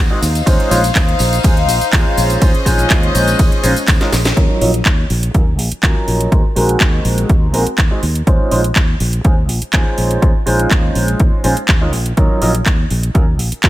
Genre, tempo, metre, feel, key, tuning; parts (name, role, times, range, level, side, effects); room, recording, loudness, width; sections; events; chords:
filtered disco house; 123 BPM; 4/4; straight; Eb dorian; A4 = 440 Hz
rich chamber string section; sustained chords; 0.0-4.4 s; C4 to Gb5; -20 LUFS; left 4 dB; vintage 12-bit sampler grit, sidechain pumping, low-pass filter
fingered electric bass; bass; 0.0-13.7 s; Bb1 to Eb2; -17 LUFS; equal; sidechain pumping, low-pass filter
clear concert grand piano; accompaniment; 0.1-13.7 s; Gb3 to C5; -19 LUFS; right 1 dB; phaser, sidechain pumping, low-pass filter
house drum kit; drums; 0.2-13.7 s; cabasa, handclaps, hi-hat, ride cymbal, snare drum; -19 LUFS; right 1 dB; sidechain pumping on hats, sidechain pumping on perc, sidechain pumping on cymbals
tambourine; percussion; 0.2-13.7 s; -28 LUFS; right 1 dB; sidechain pumping on perc, low-pass filter on perc
electronic kick drum; drums; 0.5-13.7 s; -13 LUFS; equal
digital ambience; -11 LUFS; side -15 dB against mid
0.0-4.4 A section; 4.4-13.7 B section
drop 0.0-4.4; drum fill 4.0-4.4; band accent 4.2; filter sweep 4.4-13.7
0.2 Bbm11; 4.4 Ebm9; 6.3 Ab7; 8.0 Bbm11; 12.2 Ebm9